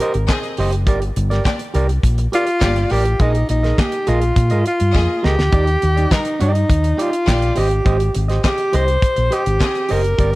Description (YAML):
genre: disco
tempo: 103 BPM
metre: 4/4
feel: straight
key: unclear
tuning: A4 = 440 Hz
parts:
  - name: clear alto saxophone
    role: melody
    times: 0.0-10.4 s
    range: Eb4 to C5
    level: -19 LUFS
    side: equal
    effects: tape echo
  - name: clean electric guitar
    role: accompaniment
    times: 0.0-10.4 s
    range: Eb4 to Eb5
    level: -24 LUFS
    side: right 3 dB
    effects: none
  - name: damped 70s drum kit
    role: drums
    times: 0.0-10.3 s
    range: handclaps, hi-hat, kick drum, snare drum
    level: -19 LUFS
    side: equal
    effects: none
  - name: fingered electric bass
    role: bass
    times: 0.1-10.4 s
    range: Gb1 to Bb2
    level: -17 LUFS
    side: equal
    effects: none
  - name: clear studio string section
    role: second line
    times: 0.3-9.9 s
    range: G3 to Eb5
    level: -28 LUFS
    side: left 2 dB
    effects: none
room: little or no reverb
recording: dark, warm production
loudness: -14 LUFS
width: side -19 dB against mid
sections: 0.0-10.4 A section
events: drum fill 4.9-5.5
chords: 0.0 Abmaj7; 0.9 Gm; 3.2 Bb7sus4; 5.5 Ebmaj7; 7.6 Abmaj7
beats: 0.29 | 0.87 1.45 2.04 2.62 | 3.20 3.78 4.36 4.95 | 5.53 6.11 6.69 7.27 | 7.86 8.44 9.02 9.60 | 10.18